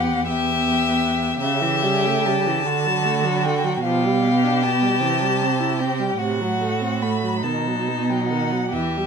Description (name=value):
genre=classical, slow romantic movement for string quartet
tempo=44-55 BPM (dotted quarters)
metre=6/8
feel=rubato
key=unclear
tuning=A4 = 440 Hz
part: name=rich violin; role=melody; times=0.0-9.1 s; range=E5 to B5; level=-25 LUFS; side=left 3 dB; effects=none
part: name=rich violin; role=second line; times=0.0-9.1 s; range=D#4 to G4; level=-25 LUFS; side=left 4 dB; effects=none
part: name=warm viola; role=accompaniment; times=0.0-9.1 s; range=C3 to E4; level=-24 LUFS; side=right 2 dB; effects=none
part: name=warm cello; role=bass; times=0.0-9.1 s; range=E2 to D3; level=-24 LUFS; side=right 4 dB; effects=none
room=light reverb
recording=close, detailed microphones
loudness=-18 LUFS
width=side -6 dB against mid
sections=0.0-9.1 A section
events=none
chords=0.0 Em; 1.4 A7/C#; 2.7 D; 3.8 G7/B; 5.0 C; 6.2 F#dim/A; 7.4 B